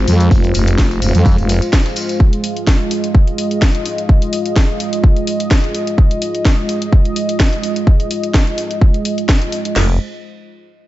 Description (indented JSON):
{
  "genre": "bass house",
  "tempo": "127 BPM",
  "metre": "4/4",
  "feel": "swing 54% on 16ths",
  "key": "F minor",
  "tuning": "A4 = 442 Hz",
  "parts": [
    { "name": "dark analog pad", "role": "sustained chords", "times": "0.0-10.0 s", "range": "Ab3 to Eb5", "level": "-20 LUFS", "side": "right 1 dB", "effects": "chorus, sidechain pumping" },
    { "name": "growling FM bass", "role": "bass", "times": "0.0-1.6, 9.8-10.0 s", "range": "F1 to F2", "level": "-13 LUFS", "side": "equal", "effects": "overdrive, sidechain pumping" },
    { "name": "breakbeat sampler-style drum kit", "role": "drums", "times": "0.1-2.1 s", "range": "hi-hat, ride cymbal, snare drum", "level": "-33 LUFS", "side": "right 3 dB", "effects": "sidechain pumping on cymbals, high-pass filter on cymbals, high-pass filter on snare, sidechain pumping on hats, high-pass filter on hats" },
    { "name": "garage drum kit", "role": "drums", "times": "0.1-9.7 s", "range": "hi-hat, snare drum", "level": "-21 LUFS", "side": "equal", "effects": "none" },
    { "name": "tambourine", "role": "percussion", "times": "0.1-2.2 s", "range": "none", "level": "-29 LUFS", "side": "left 3 dB", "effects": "none" },
    { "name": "house drum kit", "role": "drums", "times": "0.3-9.9 s", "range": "crash cymbal, kick drum, snare drum", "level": "-12 LUFS", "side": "equal", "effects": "none" }
  ],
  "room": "little or no reverb",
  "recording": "nothing above 7.8 kHz",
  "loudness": "-12 LUFS",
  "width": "side -15 dB against mid",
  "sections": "0.0-9.8 A section; 9.8-10.9 B section",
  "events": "none",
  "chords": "0.0 Fm"
}